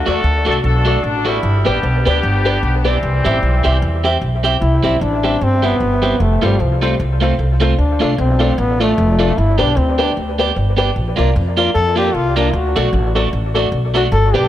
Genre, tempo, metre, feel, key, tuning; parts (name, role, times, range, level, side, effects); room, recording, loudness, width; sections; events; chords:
ska; 151 BPM; 4/4; swing 58% on 8ths; C major; A4 = 439 Hz
clear horn section; melody; 0.0-4.2 s; E3 to A4; -20 LUFS; left 2 dB; dub echo
upright bass; bass; 0.0-14.5 s; F1 to F2; -16 LUFS; equal
electric guitar at the edge of break-up; accompaniment; 0.1-14.5 s; G3 to G4; -21 LUFS; right 7 dB; spring reverb
bright upright piano; stabs; 0.1-14.5 s; F4 to E5; -21 LUFS; left 3 dB; dub echo
clear trombone; melody; 4.6-14.5 s; F3 to A4; -19 LUFS; left 2 dB; dub echo
light reverb, small room ambience; -13 LUFS; side -12 dB against mid
0.0-4.6 A section; 4.6-14.5 B section
trombone solo 4.6-14.5
0.0 D; 1.4 G; 3.0 C; 6.2 F; 7.8 Dm; 9.4 G; 10.9 Bb; 12.5 D